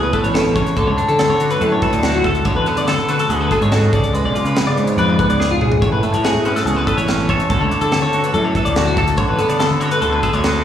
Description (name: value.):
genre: math rock and midwest emo.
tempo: 143 BPM.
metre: 4/4.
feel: straight.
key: unclear.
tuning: A4 = 440 Hz.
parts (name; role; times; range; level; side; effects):
twangy electric guitar; accompaniment; 0.0-10.6 s; E2 to D5; -20 LUFS; right 4 dB; wide subtle chorus, slapback echo.
twelve-string electric guitar; arpeggios; 0.0-10.6 s; E#4 to D5; -19 LUFS; left 3 dB; slapback echo.
fuzz fingered electric bass; bass; 0.0-10.6 s; F#1 to D3; -19 LUFS; left 1 dB; overdrive.
crisp fusion drum kit; drums; 0.1-10.5 s; hi-hat, kick drum, snare drum, toms; -22 LUFS; equal; none.
room: small room ambience.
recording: live gig heard through the venue's PA, recital hall reverb.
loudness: -14 LUFS.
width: side -10 dB against mid.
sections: 0.0-10.6 A section.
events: drum fill 5.4-5.8.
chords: 0.0 A6; 0.8 Dmaj7; 2.5 Bm7; 3.9 C#7b9; 5.8 A6; 7.5 Dmaj7; 9.2 Bm7.